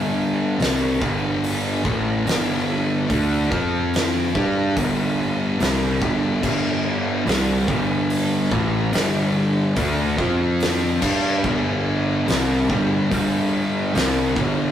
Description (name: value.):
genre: stoner and doom metal.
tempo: 72 BPM.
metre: 4/4.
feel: straight.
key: unclear.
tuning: A4 = 441 Hz.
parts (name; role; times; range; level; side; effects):
thick fuzz guitar; riff; 0.0-14.7 s; G2 to G4; -25 LUFS; left 5 dB; distortion.
thick fuzz guitar; riff; 0.0-14.7 s; G2 to G4; -26 LUFS; right 4 dB; distortion.
fuzz picked electric bass; bass; 0.0-14.7 s; G1 to G2; -23 LUFS; equal; overdrive.
oversized low-tuned drum kit; drums; 0.6-14.6 s; crash cymbal, hi-hat, kick drum, snare drum; -26 LUFS; equal; none.
crunchy overdriven guitar; riff; 6.4-14.7 s; G2 to G4; -28 LUFS; equal; none.
room: moderate studio reverb, RT60 0.5 s.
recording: rough rehearsal-room recording, warm saturation.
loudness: -18 LUFS.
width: side -10 dB against mid.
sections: 0.0-14.7 A section.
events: none.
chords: 0.0 G5; 3.5 F5; 4.3 G5; 10.2 F5; 11.0 G5.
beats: 0.60 1.43 2.27 | 3.10 3.93 4.77 5.60 | 6.43 7.27 8.10 8.94 | 9.77 10.60 11.44 12.27 | 13.11 13.94.